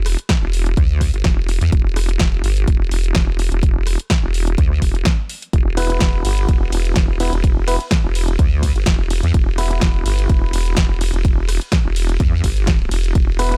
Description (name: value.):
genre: bass house.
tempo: 126 BPM.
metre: 4/4.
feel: swing 54% on 16ths.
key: E minor.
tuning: A4 = 442 Hz.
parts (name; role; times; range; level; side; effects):
vowel-sweep wobble bass; bass; 0.0-13.6 s; E1 to E2; -20 LUFS; equal; chorus, tube saturation, sidechain pumping.
house drum kit; drums; 0.1-13.6 s; hi-hat, ride cymbal, rim click, snare drum; -26 LUFS; equal; none.
electronic kick drum; drums; 0.3-13.3 s; none; -19 LUFS; equal; none.
percussive organ stab; stabs; 5.8-13.6 s; B3 to B4; -28 LUFS; equal; chorus, cassette tape, sidechain pumping, dub echo.
room: little or no reverb.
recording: none.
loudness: -17 LUFS.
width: mono.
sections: 0.0-13.6 A section.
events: none.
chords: 0.0 E5.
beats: 0.29 0.77 1.25 | 1.72 2.20 2.68 3.15 | 3.63 4.11 4.58 5.06 | 5.53 6.01 6.49 6.96 | 7.44 7.91 8.39 8.87 | 9.34 9.82 10.29 10.77 | 11.25 11.72 12.20 12.68 | 13.15.